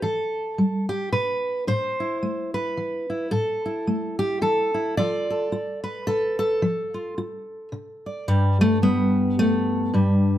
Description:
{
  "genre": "folk, solo fingerstyle acoustic guitar",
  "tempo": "109 BPM",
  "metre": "3/4",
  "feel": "swing 58% on 8ths",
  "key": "unclear",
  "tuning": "A4 = 441 Hz",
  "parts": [
    { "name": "fingerpicked steel-string acoustic guitar", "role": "solo", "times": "0.0-10.4 s", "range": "G2 to D5", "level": "-21 LUFS", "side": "equal", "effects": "none" }
  ],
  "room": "moderate studio reverb, RT60 0.8 s",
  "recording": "none",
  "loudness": "-21 LUFS",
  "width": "side -12 dB against mid",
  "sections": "0.0-8.3 A section; 8.3-10.4 B section",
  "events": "none",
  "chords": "0.0 Em; 1.7 Am; 5.0 F6; 8.3 N.C."
}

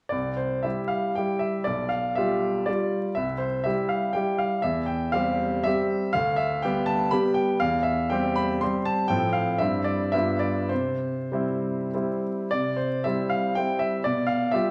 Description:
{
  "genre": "classical, romantic triple-time dance for piano with dotted rhythms",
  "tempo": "96-129 BPM",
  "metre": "3/4",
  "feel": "rubato",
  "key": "C major",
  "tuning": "A4 = 440 Hz",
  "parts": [
    { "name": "clear baby grand piano", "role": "solo", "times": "0.1-14.7 s", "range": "B1 to C6", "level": "-26 LUFS", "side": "equal", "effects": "none" }
  ],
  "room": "wet recital hall reverb, RT60 1.3 s",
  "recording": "vinyl crackle",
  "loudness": "-26 LUFS",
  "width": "mono",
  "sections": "0.1-12.5 A section; 12.5-14.7 A section",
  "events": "none",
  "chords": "0.1 C; 1.7 G7/B; 3.2 C; 4.6 C/E; 6.1 G/D; 7.6 C/E; 9.1 F/A; 9.6 C/G; 10.1 G7; 10.7 C; 14.1 G7/B"
}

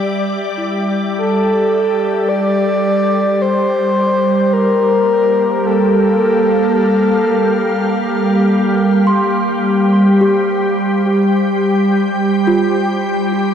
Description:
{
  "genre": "ambient",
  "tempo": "53 BPM",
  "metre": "3/4",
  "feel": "straight",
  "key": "G dorian",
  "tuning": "A4 = 442 Hz",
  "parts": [
    { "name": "soft additive organ-like pad", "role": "sustained chords", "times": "0.0-13.5 s", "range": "G3 to G5", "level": "-14 LUFS", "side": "equal", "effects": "ensemble chorus, built-in reverb" },
    { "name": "small celesta", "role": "arpeggios", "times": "0.0-13.5 s", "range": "E4 to C6", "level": "-21 LUFS", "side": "right 1 dB", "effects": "tape echo" },
    { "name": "breathy flute-like synth lead", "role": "melody", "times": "1.2-8.5 s", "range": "A4 to D5", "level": "-16 LUFS", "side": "left 1 dB", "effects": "chorus, tape echo" }
  ],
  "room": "wet huge ambient reverb, RT60 8.1 s",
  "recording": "dark, warm production",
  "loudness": "-12 LUFS",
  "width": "side -8 dB against mid",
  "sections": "0.0-2.3 A section; 2.3-13.5 B section",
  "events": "none",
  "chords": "0.0 A7(no3)/G; 2.3 Gm7"
}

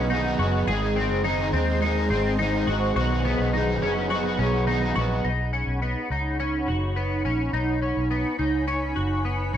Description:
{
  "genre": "dream pop",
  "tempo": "105 BPM",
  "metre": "4/4",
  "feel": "straight",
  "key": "B major",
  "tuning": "A4 = 439 Hz",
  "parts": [
    { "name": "overdriven semi-hollow guitar", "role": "accompaniment", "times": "0.0-5.3 s", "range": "G#2 to G#4", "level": "-26 LUFS", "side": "right 2 dB", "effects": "harmonic tremolo, wide subtle chorus" },
    { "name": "ethereal airy pad", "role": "sustained chords", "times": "0.0-9.6 s", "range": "D#4 to B#5", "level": "-29 LUFS", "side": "equal", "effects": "ensemble chorus, built-in reverb" },
    { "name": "twelve-string electric guitar", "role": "arpeggios", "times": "0.0-9.6 s", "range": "B3 to G#4", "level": "-27 LUFS", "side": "left 3 dB", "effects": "analog chorus, tape echo" },
    { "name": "vintage muted fingered electric bass", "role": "bass", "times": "0.0-9.6 s", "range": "F#1 to D#2", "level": "-27 LUFS", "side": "equal", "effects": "none" }
  ],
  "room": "moderate studio reverb, RT60 0.6 s",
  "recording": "dry, gritty hardware recording, transformer saturation",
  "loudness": "-22 LUFS",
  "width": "side -10 dB against mid",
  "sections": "0.0-5.2 A section; 5.2-9.6 B section",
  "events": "none",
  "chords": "0.0 B6; 0.7 G#; 3.0 B6"
}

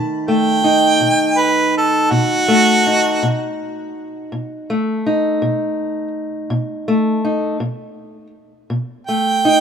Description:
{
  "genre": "acoustic country blues, solo or duo",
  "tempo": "55 BPM (dotted quarters)",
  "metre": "12/8",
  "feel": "straight",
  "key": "unclear",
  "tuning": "A4 = 440 Hz",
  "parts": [
    { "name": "fingerpicked steel-string acoustic guitar", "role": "accompaniment", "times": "0.0-9.6 s", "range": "B2 to D#4", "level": "-17 LUFS", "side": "equal", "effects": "none" },
    { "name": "warm harmonica", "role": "melody", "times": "0.3-9.6 s", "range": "F#4 to G5", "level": "-15 LUFS", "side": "right 2 dB", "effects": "slapback echo" }
  ],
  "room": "light reverb, small room ambience",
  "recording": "rough home demo mix",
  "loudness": "-14 LUFS",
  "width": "side -7 dB against mid",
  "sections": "0.0-9.6 A section",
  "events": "harmonica solo 0.0-9.6",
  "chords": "0.0 B7"
}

